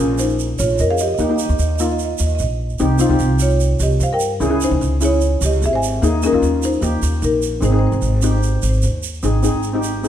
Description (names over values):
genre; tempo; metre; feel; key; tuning
calypso; 149 BPM; 4/4; straight; Ab major; A4 = 440 Hz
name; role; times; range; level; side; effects
marimba with soft mallets; melody; 0.0-8.9 s; Db4 to Ab5; -20 LUFS; equal; none
steel pan; accompaniment; 0.0-10.1 s; Bb3 to Ab4; -21 LUFS; left 1 dB; none
upright bass; bass; 0.0-10.1 s; Ab1 to G2; -18 LUFS; equal; none
tube shaker; percussion; 0.2-10.1 s; none; -29 LUFS; right 9 dB; none
room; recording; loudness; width
moderate recital hall reverb, RT60 1.5 s; none; -15 LUFS; side -10 dB against mid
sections
0.0-9.2 A section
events
none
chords
0.0 Bbm; 1.2 Eb; 2.8 Cm; 4.4 Dbm; 6.0 Ebsus4; 6.8 Eb; 7.6 Ab